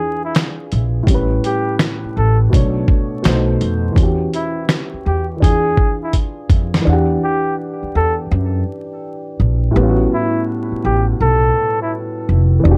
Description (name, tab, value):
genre	lo-fi hip hop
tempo	83 BPM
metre	4/4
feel	swing 65% on 16ths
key	E dorian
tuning	A4 = 440 Hz
part	trumpet with bucket mute	melody	0.0-11.9 s	E4 to A4	-22 LUFS	equal	low-pass filter, analog delay
part	dark upright piano	accompaniment	0.0-12.8 s	A2 to F#5	-23 LUFS	equal	cassette tape, low-pass filter
part	dusty soul sampler-style drum kit	drums	0.3-6.9 s	finger snaps, hi-hat, kick drum, snare drum	-18 LUFS	equal	none
part	upright bass	bass	0.7-12.8 s	E1 to F#2	-18 LUFS	equal	none
room	light reverb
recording	dark, warm production, vinyl crackle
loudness	-17 LUFS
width	mono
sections	0.0-6.9 A section; 6.9-12.8 B section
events	drum fill 6.1-6.9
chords	0.0 E7b9; 1.1 A9; 2.5 Bm9; 3.2 B7b9; 4.0 Em69; 5.4 E7b9; 6.9 Em9; 9.8 A13